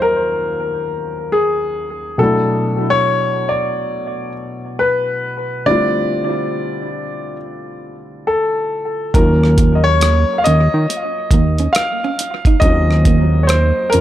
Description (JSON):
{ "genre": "R&B, neo-soul", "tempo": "69 BPM", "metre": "4/4", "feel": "swing 62% on 16ths", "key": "unclear", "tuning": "A4 = 440 Hz", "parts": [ { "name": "warm concert grand piano", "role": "melody", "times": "0.0-14.0 s", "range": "Ab4 to F5", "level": "-17 LUFS", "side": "left 1 dB", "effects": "analog delay" }, { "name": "warm upright piano", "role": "accompaniment", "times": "0.0-14.0 s", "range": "Eb2 to F4", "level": "-22 LUFS", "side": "left 1 dB", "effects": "analog delay" }, { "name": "boom bap sampler-style drum kit", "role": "drums", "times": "9.1-14.0 s", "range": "hi-hat, kick drum, rim click", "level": "-17 LUFS", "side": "right 1 dB", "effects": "none" }, { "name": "vintage hollow-body jazz guitar", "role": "second line", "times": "9.2-14.0 s", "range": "Bb3 to Eb4", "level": "-25 LUFS", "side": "right 8 dB", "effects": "analog delay" }, { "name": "fat analog bass", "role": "bass", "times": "9.2-14.0 s", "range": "Eb2 to Eb3", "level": "-13 LUFS", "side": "right 1 dB", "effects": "none" } ], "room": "light reverb", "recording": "echo-heavy mix", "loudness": "-14 LUFS", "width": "side -12 dB against mid", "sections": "0.0-14.0 A section", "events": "none", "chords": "0.0 Ebm9; 2.2 Bm7; 5.7 Dm9; 9.1 Ebm9" }